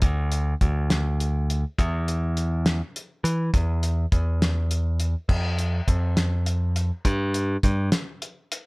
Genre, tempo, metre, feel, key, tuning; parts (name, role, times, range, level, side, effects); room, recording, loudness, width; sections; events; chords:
indie rock; 68 BPM (dotted quarters); 6/8; straight; A4 = 440 Hz
modern bright picked electric bass; bass; 0.0-7.9 s; D2 to E3; -23 LUFS; equal
cloth-damped thuddy drum kit; drums; 0.0-8.7 s; crash cymbal, hi-hat, kick drum, snare drum; -24 LUFS; equal
little or no reverb; -22 LUFS; side -29 dB against mid
0.0-5.3 A section; 5.3-8.7 B section